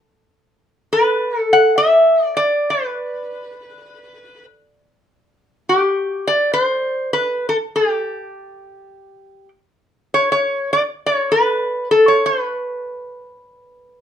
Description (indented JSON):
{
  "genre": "hawaiian",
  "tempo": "101 BPM",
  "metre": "4/4",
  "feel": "swing 56% on 8ths",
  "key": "G major",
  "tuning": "A4 = 440 Hz",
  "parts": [
    { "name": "metal-body resonator slide guitar", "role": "solo", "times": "0.9-14.0 s", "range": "G4 to F#5", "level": "-15 LUFS", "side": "equal", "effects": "none" }
  ],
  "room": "moderate small room reverb, RT60 0.5 s",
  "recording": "none",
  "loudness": "-15 LUFS",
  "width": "side -9 dB against mid",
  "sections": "0.0-10.1 A section; 10.1-14.0 B section",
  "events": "none",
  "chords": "none",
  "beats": "| 0.58 1.18 1.77 2.37 | 2.96 3.56 4.16 4.75 | 5.34 5.94 6.54 7.13 | 7.72 8.32 8.91 9.51 | 10.10 10.69 11.29 11.88 | 12.47 13.06 13.66"
}